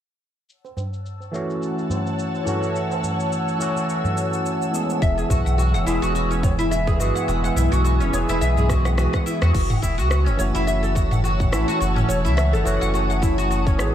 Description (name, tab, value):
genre	organic downtempo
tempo	106 BPM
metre	4/4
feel	swing 56% on 16ths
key	F# dorian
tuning	A4 = 441 Hz
part	ethereal airy pad	sustained chords	1.2-13.9 s	B4 to E6	-29 LUFS	left 1 dB	ensemble chorus, built-in reverb, phaser, vintage 12-bit sampler grit, sidechain pumping
part	organic electronic drum kit	drums	0.5-13.9 s	cabasa, crash cymbal, rim click, toms	-29 LUFS	equal	low-pass filter on perc, low-pass filter on snare, low-pass filter on cymbals, low-pass filter on toms, low-pass filter on room
part	tabla	percussion	0.6-9.5 s	none	-30 LUFS	equal	none
part	overdriven tine electric piano	accompaniment	1.3-13.9 s	E3 to G#4	-25 LUFS	right 1 dB	phaser, sidechain pumping, low-pass filter, ping-pong delay
part	oud	arpeggios	5.0-13.9 s	C#4 to F#5	-24 LUFS	equal	vintage 12-bit sampler grit, ping-pong delay
part	warm sub bass	bass	5.0-13.9 s	E1 to E2	-21 LUFS	equal	tube saturation
part	electronic kick drum	drums	5.0-13.8 s	none	-22 LUFS	equal	none
room	light reverb, digital ambience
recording	none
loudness	-19 LUFS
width	side -10 dB against mid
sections	0.5-9.5 A section; 9.5-13.9 B section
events	filter sweep on drum 0.5-9.5; filter sweep on tine electric piano 0.5-9.5; drum fill 8.7-9.5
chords	0.5 F#m7; 5.0 E; 9.5 F#m7